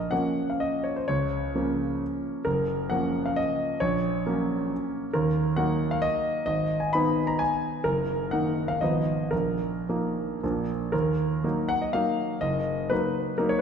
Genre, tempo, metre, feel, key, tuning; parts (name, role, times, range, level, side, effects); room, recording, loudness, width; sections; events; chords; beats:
classical, romantic triple-time dance for piano with dotted rhythms; 103-146 BPM; 3/4; rubato; Eb minor from 5.1 s; A4 = 439 Hz
clear concert grand piano; solo; 0.0-13.6 s; Gb1 to Cb6; -24 LUFS; equal
wet concert hall reverb, RT60 2.3 s; recorded in a church or concert hall; -24 LUFS; side -7 dB against mid
0.0-10.9 A section; 10.9-13.6 B section
0.0 Bbm; 1.1 Bbm/Db; 2.5 Gbmaj7; 3.8 Gb/Bb; 5.1 Ebm; 6.5 Abm; 7.9 Ebm/Gb; 8.8 Fm7b5/Ab; 9.3 Bbsus4; 10.4 Bb; 10.9 Ebm; 12.4 Ebm/Gb
0.12 0.62 | 1.08 1.55 2.02 | 2.46 2.92 3.38 | 3.81 4.26 4.72 | 5.14 5.57 6.03 | 6.48 6.93 7.41 | 7.85 8.31 8.81 | 9.32 9.88 10.43 | 10.93 11.44 11.94 | 12.42 12.91 13.39